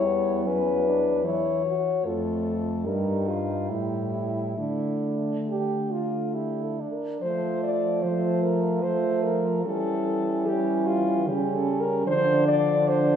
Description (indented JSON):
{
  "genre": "classical, lyrical piece for horn quartet",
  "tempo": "66-77 BPM",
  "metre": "3/4",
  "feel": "rubato",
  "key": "D minor",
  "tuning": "A4 = 440 Hz",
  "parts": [
    { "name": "mellow French horn", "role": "melody", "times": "0.0-13.2 s", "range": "D4 to D5", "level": "-27 LUFS", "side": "left 3 dB", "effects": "none" },
    { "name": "warm French horn", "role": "second line", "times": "0.0-13.2 s", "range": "A3 to G4", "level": "-30 LUFS", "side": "right 6 dB", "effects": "none" },
    { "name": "mellow French horn", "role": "accompaniment", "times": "0.0-13.2 s", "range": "E3 to A3", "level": "-30 LUFS", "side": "left 1 dB", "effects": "none" },
    { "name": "mellow French horn", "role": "bass", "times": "0.0-13.2 s", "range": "E2 to F3", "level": "-29 LUFS", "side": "right 1 dB", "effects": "none" }
  ],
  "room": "wet recital hall reverb, RT60 1.8 s",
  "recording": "recorded in a church or concert hall",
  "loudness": "-23 LUFS",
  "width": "side -8 dB against mid",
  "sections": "0.0-7.2 A section; 7.2-13.2 B section",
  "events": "none",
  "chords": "0.0 C#dim/E; 2.0 F; 2.9 Eb/G; 3.7 A5; 4.6 Dm; 7.2 F; 9.6 A7/E; 12.1 Dm"
}